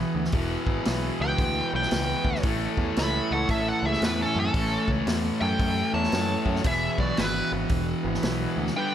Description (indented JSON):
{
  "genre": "blues rock power trio and southern rock",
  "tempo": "114 BPM",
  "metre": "4/4",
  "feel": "swing 64% on 8ths",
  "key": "A major",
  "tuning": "A4 = 442 Hz",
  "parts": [
    { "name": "bright tonewheel organ", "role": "sustained chords", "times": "0.0-8.9 s", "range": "B3 to E5", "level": "-38 LUFS", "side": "right 4 dB", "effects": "slow rotary speaker" },
    { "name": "fuzz guitar", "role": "riff", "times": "0.0-8.9 s", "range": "E2 to A3", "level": "-27 LUFS", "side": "equal", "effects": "distortion" },
    { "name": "picked electric bass", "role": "bass", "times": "0.0-8.7 s", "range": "E1 to F#2", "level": "-30 LUFS", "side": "equal", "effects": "none" },
    { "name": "vintage drum kit", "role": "drums", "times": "0.2-8.7 s", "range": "hi-hat, kick drum, snare drum", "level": "-29 LUFS", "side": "equal", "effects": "none" },
    { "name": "dark smooth lead guitar", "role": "melody", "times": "1.2-8.9 s", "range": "A4 to B5", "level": "-29 LUFS", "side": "equal", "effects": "wah, overdrive" },
    { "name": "biting lead guitar", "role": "second line", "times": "1.2-8.9 s", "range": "C#4 to E5", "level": "-36 LUFS", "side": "right 3 dB", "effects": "overdrive, analog delay" }
  ],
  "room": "light reverb",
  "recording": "none",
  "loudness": "-23 LUFS",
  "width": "side -10 dB against mid",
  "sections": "0.0-8.9 A section",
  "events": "none",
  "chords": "0.0 E; 2.4 A; 6.7 E",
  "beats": "| 0.34 0.86 1.39 1.92 | 2.44 2.97 3.50 4.02 | 4.55 5.08 5.60 6.13 | 6.66 7.18 7.71 8.23 | 8.76"
}